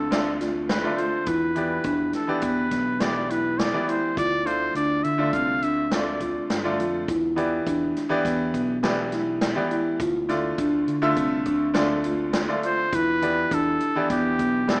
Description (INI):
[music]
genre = progressive instrumental, band music in an uneven meter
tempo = 103 BPM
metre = 5/4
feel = straight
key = unclear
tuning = A4 = 440 Hz
[part]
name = clear trumpet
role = melody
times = 0.0-6.5, 12.7-14.8 s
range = G4 to F5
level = -29 LUFS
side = equal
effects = plate reverb
[part]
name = bright baby grand piano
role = accompaniment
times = 0.0-14.8 s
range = D3 to E5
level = -30 LUFS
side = equal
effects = none
[part]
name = marimba with soft mallets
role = arpeggios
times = 0.0-14.8 s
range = B3 to F4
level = -28 LUFS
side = equal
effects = none
[part]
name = overdriven fingered electric bass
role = bass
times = 0.0-14.8 s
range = B1 to D3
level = -38 LUFS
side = equal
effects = none
[part]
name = swinging big-band drum kit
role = drums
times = 0.1-14.8 s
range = hi-hat, kick drum, snare drum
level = -33 LUFS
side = equal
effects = none
[sound]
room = light reverb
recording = rough home demo mix, small speaker sound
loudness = -24 LUFS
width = mono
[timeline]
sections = 0.0-14.8 A section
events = none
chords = 0.0 Dm; 1.3 Em7; 4.2 Dm; 7.1 Em7; 10.0 Dm; 12.9 Em7